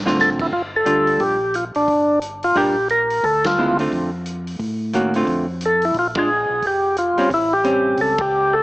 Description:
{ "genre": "soul jazz organ trio", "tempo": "177 BPM", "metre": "4/4", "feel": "swing 62% on 8ths", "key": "D minor", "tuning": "A4 = 441 Hz", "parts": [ { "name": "mellow tonewheel organ", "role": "bass", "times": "0.0-8.6 s", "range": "F1 to A2", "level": "-30 LUFS", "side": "equal", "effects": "chorus vibrato, slow rotary speaker" }, { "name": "archtop guitar, miked and amplified", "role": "accompaniment", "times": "0.1-8.2 s", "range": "C#3 to Bb4", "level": "-21 LUFS", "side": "right 1 dB", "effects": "none" }, { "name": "vintage drum kit", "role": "drums", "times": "0.1-8.3 s", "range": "crash cymbal, hi-hat, kick drum, ride cymbal, snare drum", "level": "-31 LUFS", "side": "equal", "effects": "vintage 12-bit sampler grit" }, { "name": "percussive tonewheel organ", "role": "melody", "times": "0.2-8.6 s", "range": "D4 to Bb4", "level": "-17 LUFS", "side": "equal", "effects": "slow rotary speaker" } ], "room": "moderate spring reverb, RT60 2.1 s", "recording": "cassette tape, small speaker sound", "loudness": "-16 LUFS", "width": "side -19 dB against mid", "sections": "0.0-8.6 A section", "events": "drum fill 0.0; band accent 3.4, 6.1, 8.2", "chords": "0.0 Dm7; 0.5 Gm7; 3.2 Dm7; 6.0 Bb7(no3); 7.3 A7#9" }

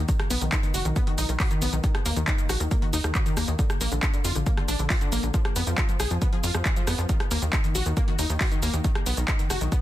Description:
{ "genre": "uplifting trance", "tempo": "137 BPM", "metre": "4/4", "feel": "straight", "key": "Eb harmonic minor", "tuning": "A4 = 440 Hz", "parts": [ { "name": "wide unison pluck", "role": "arpeggios", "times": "0.0-9.8 s", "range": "D3 to Ab4", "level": "-30 LUFS", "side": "left 3 dB", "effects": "cassette tape, sidechain pumping, ping-pong delay" }, { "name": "tight sequencer bass", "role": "bass", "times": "0.0-9.7 s", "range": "F#1 to F2", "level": "-26 LUFS", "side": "equal", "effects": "sidechain pumping" }, { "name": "electronic kick drum", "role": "drums", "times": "0.1-9.8 s", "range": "none", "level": "-25 LUFS", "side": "equal", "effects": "none" }, { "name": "punchy analog drum machine", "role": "drums", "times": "0.1-9.8 s", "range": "handclaps, hi-hat, rim click, shaker", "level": "-29 LUFS", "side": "right 1 dB", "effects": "sidechain pumping on hats, sidechain pumping on cymbals, sidechain pumping on perc" } ], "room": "little or no reverb", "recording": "dense, heavily limited modern master", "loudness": "-22 LUFS", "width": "side -14 dB against mid", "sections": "0.0-9.8 A section", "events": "none", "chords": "0.1 B; 1.8 Eb5; 3.6 Bb; 5.3 F(b5, no3); 7.1 Eb5; 8.8 B" }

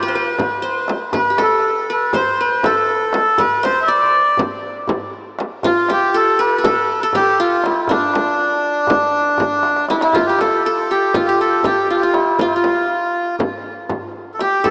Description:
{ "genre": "Turkish makam ensemble", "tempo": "240 BPM (eighths)", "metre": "9/8", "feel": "straight", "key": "unclear", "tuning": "A4 = 440 Hz", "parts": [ { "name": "melodica", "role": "melody", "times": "0.0-14.7 s", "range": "D4 to E5-30c", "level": "-16 LUFS", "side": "equal", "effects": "tape echo" }, { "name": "qanun", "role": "second line", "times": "0.0-14.7 s", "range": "D4 to D5", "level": "-20 LUFS", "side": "equal", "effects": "none" }, { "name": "darbuka", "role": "percussion", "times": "0.4-14.7 s", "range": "none", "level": "-29 LUFS", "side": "equal", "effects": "none" }, { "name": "frame drum", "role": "percussion", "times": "0.4-14.7 s", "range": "none", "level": "-23 LUFS", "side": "equal", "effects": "none" } ], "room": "wet lush hall reverb, RT60 2.6 s", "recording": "dreamy mix soaked in reverb, small speaker sound", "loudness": "-14 LUFS", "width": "side -38 dB against mid", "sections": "0.0-10.1 A section; 10.1-14.7 B section", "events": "drum fill 9.6-10.1", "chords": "none" }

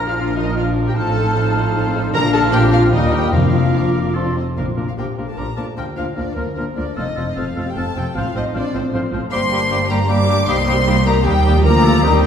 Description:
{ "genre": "quick classical-period movement for symphony orchestra", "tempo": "152 BPM", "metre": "3/4", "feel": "rubato", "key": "Bb major", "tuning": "A4 = 438 Hz", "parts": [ { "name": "dark studio violin section", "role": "melody", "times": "0.0-12.3 s", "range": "D4 to Bb5", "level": "-27 LUFS", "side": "left 4 dB", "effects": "none" }, { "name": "bright small flute group", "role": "second line", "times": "0.0-12.3 s", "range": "C6 to F6", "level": "-29 LUFS", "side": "left 2 dB", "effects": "none" }, { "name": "dark clarinet", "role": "second line", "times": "0.0-12.3 s", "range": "Bb3 to Eb4", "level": "-27 LUFS", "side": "left 3 dB", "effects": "none" }, { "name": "warm chamber violin section", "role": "second line", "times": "0.0-12.3 s", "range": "Bb3 to D6", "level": "-24 LUFS", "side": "left 2 dB", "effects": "none" }, { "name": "warm oboe", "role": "second line", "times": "0.0-12.3 s", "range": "G4 to C5", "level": "-31 LUFS", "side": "right 1 dB", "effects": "none" }, { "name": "warm bassoon", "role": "accompaniment", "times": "0.0-12.3 s", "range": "F3 to G3", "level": "-29 LUFS", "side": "equal", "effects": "none" }, { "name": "warm French horn section", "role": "sustained chords", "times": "0.0-12.3 s", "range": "F3 to D5", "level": "-24 LUFS", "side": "left 4 dB", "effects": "none" }, { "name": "dark trumpet", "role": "stabs", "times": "0.0-4.2 s", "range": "Eb4 to Bb4", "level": "-26 LUFS", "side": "right 2 dB", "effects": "none" }, { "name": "dark chamber double bass section", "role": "bass", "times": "0.0-12.3 s", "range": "F1 to Eb2", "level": "-21 LUFS", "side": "right 2 dB", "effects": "none" }, { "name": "warm chamber cello section", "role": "bass", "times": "0.0-12.3 s", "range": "C2 to Bb2", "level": "-24 LUFS", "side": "right 2 dB", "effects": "none" }, { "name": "rich chamber viola section", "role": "accompaniment", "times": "0.1-12.3 s", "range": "F3 to Bb4", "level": "-24 LUFS", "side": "right 1 dB", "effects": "none" }, { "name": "timpani", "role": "percussion", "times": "2.1-5.1 s", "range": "F2 to Bb2", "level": "-21 LUFS", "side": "left 1 dB", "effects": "none" } ], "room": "wet scoring stage reverb, RT60 1.7 s", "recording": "heard from further back in the room", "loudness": "-15 LUFS", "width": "side -8 dB against mid", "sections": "0.0-4.6 A section; 4.6-12.3 B section", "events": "none", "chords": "0.0 Bb; 1.0 F7/A; 2.1 Bb; 2.9 Eb; 3.3 Bb/F; 4.2 F; 4.6 Bb; 5.8 Bb/D; 7.0 F; 8.2 F/A; 9.3 Gm; 10.5 Cm7; 11.6 Bb/D" }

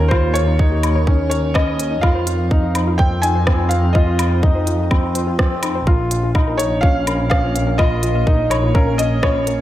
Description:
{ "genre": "piano and strings electronica", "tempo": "125 BPM", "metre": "4/4", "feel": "straight", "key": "F minor", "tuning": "A4 = 440 Hz", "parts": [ { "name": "felt-muted upright piano", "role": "melody", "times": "0.0-9.6 s", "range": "Bb4 to Ab5", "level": "-22 LUFS", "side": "left 1 dB", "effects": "tape echo" }, { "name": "granular cloud pad", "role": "sustained chords", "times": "0.0-9.6 s", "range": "Bb3 to Ab5", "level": "-29 LUFS", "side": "right 1 dB", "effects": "built-in reverb, sidechain pumping" }, { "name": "dark baby grand piano", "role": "riff", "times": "0.0-9.6 s", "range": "C4 to F4", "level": "-23 LUFS", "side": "equal", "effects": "tape echo" }, { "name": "muted studio double bass section", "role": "bass", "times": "0.0-9.6 s", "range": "Bb1 to F2", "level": "-19 LUFS", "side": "equal", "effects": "sidechain pumping" }, { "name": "warbly dusty pluck", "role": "arpeggios", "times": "0.1-9.6 s", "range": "Eb4 to F5", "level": "-30 LUFS", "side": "left 4 dB", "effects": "chorus, sidechain pumping, tape echo" }, { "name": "electronic kick drum", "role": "drums", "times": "0.1-9.3 s", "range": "none", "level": "-16 LUFS", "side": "equal", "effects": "none" }, { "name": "organic electronic drum kit", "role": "drums", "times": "0.1-9.6 s", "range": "hi-hat, rim click, woodblock", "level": "-25 LUFS", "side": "left 1 dB", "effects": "none" } ], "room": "light reverb, digital ambience", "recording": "none", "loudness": "-14 LUFS", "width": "side -13 dB against mid", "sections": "0.0-9.6 A section", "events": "none", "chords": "0.0 Eb7; 2.0 Fm7; 5.9 Bbm" }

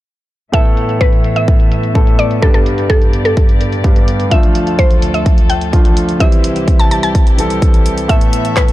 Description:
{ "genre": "EDM, festival progressive house", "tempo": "127 BPM", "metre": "4/4", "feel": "straight", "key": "A minor", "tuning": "A4 = 440 Hz", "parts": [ { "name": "mallet-like synth pluck", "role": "melody", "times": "0.5-8.7 s", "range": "A4 to A5", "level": "-19 LUFS", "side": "equal", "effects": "chorus, tape echo" }, { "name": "dark baby grand piano", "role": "accompaniment", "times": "0.5-8.7 s", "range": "G2 to A4", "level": "-17 LUFS", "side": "equal", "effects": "sidechain pumping" }, { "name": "rich chamber string section", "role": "sustained chords", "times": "0.5-8.7 s", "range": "C2 to E5", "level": "-21 LUFS", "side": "right 1 dB", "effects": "sidechain pumping, low-pass filter" }, { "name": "big-room dance drum kit", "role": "drums", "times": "0.5-8.7 s", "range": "handclaps, hi-hat", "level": "-26 LUFS", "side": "right 1 dB", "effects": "low-pass filter on hats, low-pass filter on snare" }, { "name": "electronic kick drum", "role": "drums", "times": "0.5-8.7 s", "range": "none", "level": "-10 LUFS", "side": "equal", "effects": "none" } ], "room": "small room ambience", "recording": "dark, warm production", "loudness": "-10 LUFS", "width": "side -16 dB against mid", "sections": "0.5-8.7 A section", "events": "filter sweep on string section 0.5-8.7", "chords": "0.5 Asus2; 2.4 G; 4.3 Dm; 6.2 C; 8.1 Asus2" }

